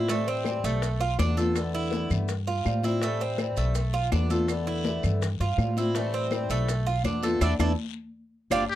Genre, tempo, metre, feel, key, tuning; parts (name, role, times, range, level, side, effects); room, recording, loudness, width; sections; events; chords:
latin, Cuban son and guajira; 164 BPM; 4/4; straight; A minor; A4 = 440 Hz
picked acoustic archtop guitar; accompaniment; 0.0-8.6 s; D3 to F4; -30 LUFS; left 3 dB
Cuban tres; arpeggios; 0.0-8.6 s; A3 to A4; -30 LUFS; right 5 dB
upright bass; bass; 0.0-8.6 s; G1 to A2; -28 LUFS; equal
bongos; percussion; 0.1-8.6 s; -37 LUFS; left 10 dB
congas; percussion; 0.1-8.6 s; -34 LUFS; left 2 dB
guiro; percussion; 0.1-8.6 s; -44 LUFS; left 25 dB
maracas; percussion; 0.1-8.6 s; -45 LUFS; right 16 dB
claves; percussion; 0.5-8.6 s; -38 LUFS; right 14 dB
trumpet with metal mute; melody; 8.7-8.8 s; G4; -24 LUFS; left 5 dB
little or no reverb; dry, close 1970s-style studio recording; -24 LUFS; side -13 dB against mid
0.0-8.8 A section
band accent 7.4-8.8; drum fill 8.3-8.8
0.1 Am9; 0.8 Bm7b5; 1.6 E7sus4; 2.3 G7sus4; 3.0 Am9; 3.8 Bm7b5; 4.5 E7sus4; 5.2 G7sus4; 6.0 Am9; 6.7 Bm7b5; 7.4 E7sus4; 8.1 G7sus4